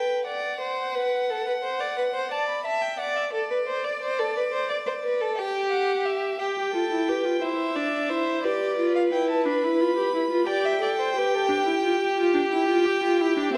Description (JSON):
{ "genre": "classical, baroque-style fugue for string quartet", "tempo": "59 BPM (dotted quarters)", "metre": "12/8", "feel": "straight", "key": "unclear", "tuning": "A4 = 440 Hz", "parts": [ { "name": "clear violin", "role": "melody", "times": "0.0-13.6 s", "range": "D5 to B5", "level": "-32 LUFS", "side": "equal", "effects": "none" }, { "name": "rich violin", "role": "second line", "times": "0.0-13.6 s", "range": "G4 to E5", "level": "-28 LUFS", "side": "equal", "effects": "none" }, { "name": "clear viola", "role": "accompaniment", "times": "6.6-13.6 s", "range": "C4 to A4", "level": "-27 LUFS", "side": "equal", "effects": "none" } ], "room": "wet recital hall reverb, RT60 1.3 s", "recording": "dark, warm production, vinyl crackle", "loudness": "-25 LUFS", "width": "mono", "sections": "0.0-13.6 A section", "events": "none", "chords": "0.3 D; 2.3 D5; 4.4 G5; 6.4 C; 10.5 G7(no3); 12.5 C (rootless)", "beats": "0.27 1.29 | 2.31 3.34 4.36 5.38 | 6.40 7.42 8.45 9.46 | 10.47 11.49 12.52 13.54" }